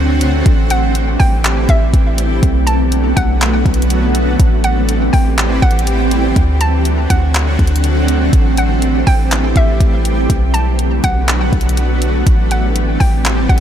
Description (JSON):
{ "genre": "hip hop, atmospheric cloud-rap", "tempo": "122 BPM", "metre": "4/4", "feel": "half-time", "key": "A dorian", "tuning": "A4 = 440 Hz", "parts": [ { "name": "shimmering ambient pad", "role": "sustained chords", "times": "0.0-13.6 s", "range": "D3 to G4", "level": "-17 LUFS", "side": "right 1 dB", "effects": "chorus, built-in reverb, sidechain pumping" }, { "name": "warm 808-style bass", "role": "bass", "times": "0.0-13.6 s", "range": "A1 to D2", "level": "-15 LUFS", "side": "equal", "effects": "none" }, { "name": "smooth R&B drum kit", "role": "drums", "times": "0.2-13.6 s", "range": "handclaps, hi-hat, kick drum", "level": "-14 LUFS", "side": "equal", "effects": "none" }, { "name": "hollow square pluck", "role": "melody", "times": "0.7-13.6 s", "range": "E5 to A5", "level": "-23 LUFS", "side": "equal", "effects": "chorus, digital delay" } ], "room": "little or no reverb", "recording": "none", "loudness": "-11 LUFS", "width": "side -9 dB against mid", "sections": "0.0-13.6 A section", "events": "none", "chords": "0.5 Am7; 2.4 Bm7; 4.4 Am7; 6.4 D7; 8.3 Am7; 10.3 Bm7; 12.3 Am7" }